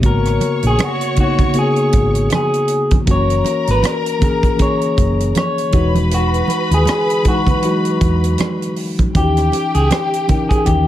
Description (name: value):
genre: lush 1970s-style soul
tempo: 79 BPM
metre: 4/4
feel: swing 58% on 16ths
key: G# minor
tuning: A4 = 441 Hz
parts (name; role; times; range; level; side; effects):
- clear studio string section; second line; 0.0-10.9 s; G4 to C#6; -25 LUFS; left 1 dB; none
- mellow reed electric piano; accompaniment; 0.0-10.9 s; C#3 to A#4; -20 LUFS; left 1 dB; none
- hollow-body short-scale fingered electric bass; bass; 0.0-10.9 s; E1 to E2; -16 LUFS; equal; none
- tight funk drum kit; drums; 0.0-10.9 s; hi-hat, kick drum, rim click; -18 LUFS; equal; none
- electric guitar through a small old amp; melody; 0.1-10.9 s; F#4 to C#5; -19 LUFS; left 1 dB; slapback echo
- congas; percussion; 0.4-10.5 s; none; -23 LUFS; right 3 dB; none
room: small room ambience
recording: none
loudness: -13 LUFS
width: side -12 dB against mid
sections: 0.0-10.9 A section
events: none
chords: 0.0 G#m11; 3.1 F#7; 5.7 Emaj9; 9.2 D#7b9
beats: | 0.04 0.79 1.55 2.31 | 3.07 3.83 4.59 5.35 | 6.11 6.87 7.63 8.39 | 9.15 9.91 10.67